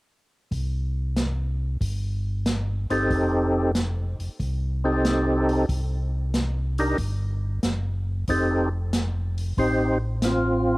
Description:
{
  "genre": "soul jazz organ trio",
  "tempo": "93 BPM",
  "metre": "4/4",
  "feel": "swing 69% on 8ths",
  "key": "unclear",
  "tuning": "A4 = 440 Hz",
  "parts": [
    { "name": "mellow tonewheel organ", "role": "bass", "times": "0.5-10.8 s", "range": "F1 to C2", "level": "-26 LUFS", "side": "equal", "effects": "overdrive, chorus vibrato, slow rotary speaker" },
    { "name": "open jazz drum kit", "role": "drums", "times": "0.5-10.4 s", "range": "hi-hat, kick drum, snare drum", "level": "-29 LUFS", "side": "equal", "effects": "cassette tape" },
    { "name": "percussive tonewheel organ", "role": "melody", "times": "2.9-10.8 s", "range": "C4 to C5", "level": "-23 LUFS", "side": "equal", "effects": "slow rotary speaker, overdrive, chorus vibrato, cassette tape" }
  ],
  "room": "small room ambience",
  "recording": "home recording on cassette",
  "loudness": "-22 LUFS",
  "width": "side -20 dB against mid",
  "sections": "0.5-10.8 A section",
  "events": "none",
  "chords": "0.5 C5; 3.1 F7; 5.7 C5; 8.3 F7",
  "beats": "| 0.52 1.16 1.81 2.46 | 3.11 3.75 4.40 5.05 | 5.70 6.34 6.99 7.64 | 8.28 8.93 9.58 10.22"
}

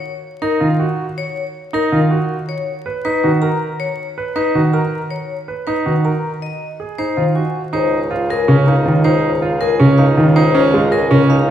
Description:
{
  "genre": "classical, minimalist pattern music",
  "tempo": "320 BPM (eighths)",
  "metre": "7/8",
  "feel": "straight",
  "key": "Db major from 7.7 s",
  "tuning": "A4 = 440 Hz",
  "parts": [
    { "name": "vibraphone with medium hard mallets", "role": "melody", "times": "0.0-11.5 s", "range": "A#4 to A#5", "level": "-21 LUFS", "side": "left 7 dB", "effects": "none" },
    { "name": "clear concert grand piano", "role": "arpeggios", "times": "0.4-11.5 s", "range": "Db4 to B4", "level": "-19 LUFS", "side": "right 3 dB", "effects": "none" },
    { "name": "warm grand piano", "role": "accompaniment", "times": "0.6-11.4 s", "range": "Db3 to Ab3", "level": "-16 LUFS", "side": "equal", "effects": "none" },
    { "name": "mellow bassoon", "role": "bass", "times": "7.7-11.5 s", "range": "Db2", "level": "-20 LUFS", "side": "right 1 dB", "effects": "none" }
  ],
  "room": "wet scoring stage reverb, RT60 1.9 s",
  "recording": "heard from further back in the room, vinyl crackle",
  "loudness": "-14 LUFS",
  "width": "side -10 dB against mid",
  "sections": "0.0-7.7 A section; 7.7-11.5 B section",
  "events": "none",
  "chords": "0.0 F#maj7(no3); 2.5 Bmaj7; 6.4 G#7(no3); 7.7 Dbadd9",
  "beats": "0.05 0.23 0.42 0.61 0.80 0.98 | 1.17 1.36 1.55 1.74 1.92 2.11 2.30 | 2.48 2.67 2.86 3.05 3.23 3.42 3.61 | 3.80 3.98 4.17 4.36 4.55 4.74 4.92 | 5.11 5.30 5.49 5.67 5.86 6.05 6.24 | 6.42 6.61 6.80 6.99 7.17 7.36 7.55 | 7.74 7.92 8.11 8.30 8.48 8.67 8.86 | 9.05 9.23 9.42 9.61 9.80 9.98 10.17 | 10.36 10.55 10.73 10.92 11.11 11.30 11.48"
}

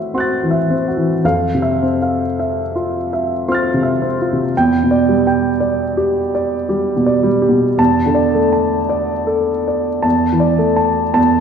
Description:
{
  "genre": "classical, impressionist solo piano",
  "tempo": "54 BPM",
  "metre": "3/4",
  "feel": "rubato",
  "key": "A minor",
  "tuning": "A4 = 440 Hz",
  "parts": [
    { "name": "warm grand piano", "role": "solo", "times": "0.0-11.4 s", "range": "E2 to A6", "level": "-14 LUFS", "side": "equal", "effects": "none" }
  ],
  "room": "wet scoring stage reverb, RT60 1.8 s",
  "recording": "heard from further back in the room",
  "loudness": "-14 LUFS",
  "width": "side -7 dB against mid",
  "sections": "0.0-11.4 A section",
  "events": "none",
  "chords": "0.0 Am6; 1.2 Fmaj7; 4.5 Em7; 7.8 Asus4/E",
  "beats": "0.12 | 1.23 2.35 3.45 | 4.53 5.61 6.70 | 7.79 8.90 10.04 | 11.17"
}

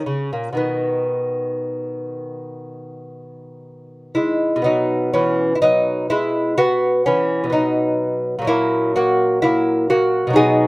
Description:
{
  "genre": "classical, baroque-style dance for lute",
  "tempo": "57-65 BPM",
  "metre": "4/4",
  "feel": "rubato",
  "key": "B major",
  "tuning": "A4 = 440 Hz",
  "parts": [
    { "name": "lute", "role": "solo", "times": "0.0-10.7 s", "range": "A#2 to G#4", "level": "-16 LUFS", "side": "equal", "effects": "none" }
  ],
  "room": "little or no reverb",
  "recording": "rough home demo mix",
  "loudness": "-16 LUFS",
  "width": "side -23 dB against mid",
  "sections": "0.0-4.6 A section; 4.6-10.7 B section",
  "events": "none",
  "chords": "0.0 F# (rootless); 0.6 B; 8.5 F#/A#",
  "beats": "| 0.56 1.61 2.63 3.64 | 4.65 5.62 6.57 7.53 | 8.48 9.44 10.37"
}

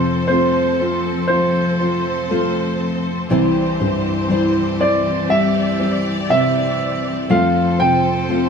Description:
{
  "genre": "pop",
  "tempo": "60 BPM",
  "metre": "4/4",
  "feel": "straight",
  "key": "C major",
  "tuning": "A4 = 440 Hz",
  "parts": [
    { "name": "clear concert grand piano", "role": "melody", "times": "0.0-8.5 s", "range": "C5 to G5", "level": "-19 LUFS", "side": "right 2 dB", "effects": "none" },
    { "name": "dark upright piano", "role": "accompaniment", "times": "0.0-8.5 s", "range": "C2 to F4", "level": "-20 LUFS", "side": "left 2 dB", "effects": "none" },
    { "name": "rich symphonic string section", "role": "sustained chords", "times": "0.0-8.5 s", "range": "E3 to D5", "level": "-22 LUFS", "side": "left 1 dB", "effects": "none" },
    { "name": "nylon-string guitar", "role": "arpeggios", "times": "0.0-8.5 s", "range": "C3 to C5", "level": "-23 LUFS", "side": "equal", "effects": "none" }
  ],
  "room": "wet studio reverb, RT60 0.7 s",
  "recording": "band playing live in one room",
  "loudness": "-15 LUFS",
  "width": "side -6 dB against mid",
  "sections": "0.0-8.5 A section",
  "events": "none",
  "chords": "0.0 F; 3.3 C; 7.3 F",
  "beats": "0.29 1.29 2.29 | 3.29 4.29 5.29 6.29 | 7.29 8.29"
}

